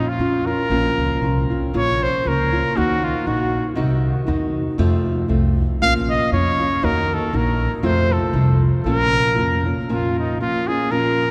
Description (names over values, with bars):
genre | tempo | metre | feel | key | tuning
mexican folk, mariachi | 118 BPM | 2/4 | swing 55% on 8ths, rubato | Bb harmonic minor | A4 = 441 Hz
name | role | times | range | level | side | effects
clear trumpet | melody | 0.0-3.7, 5.8-11.3 s | Eb4 to F5 | -23 LUFS | equal | none
nylon-string guitar | accompaniment | 0.0-11.3 s | F2 to Gb4 | -25 LUFS | equal | none
upright bass | bass | 0.2-9.7 s | Bb1 to F2 | -24 LUFS | equal | none
room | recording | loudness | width
wet cathedral reverb, RT60 5.1 s | recorded in a church or concert hall | -19 LUFS | mono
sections
0.0-1.7 A section; 1.7-9.9 B section; 9.9-11.3 A section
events
none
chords
0.0 Bbmadd9; 1.7 Bbm; 2.8 Ebm; 3.8 Cdim; 4.8 F; 5.8 Bbm; 6.8 Ebm; 7.8 F; 8.8 Bbm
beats
0.19 | 0.70 1.22 | 1.74 2.25 | 2.76 3.27 | 3.77 4.27 | 4.78 5.29 | 5.81 6.32 | 6.83 7.33 | 7.84 8.34 | 8.85 9.37 | 9.89 10.40 | 10.92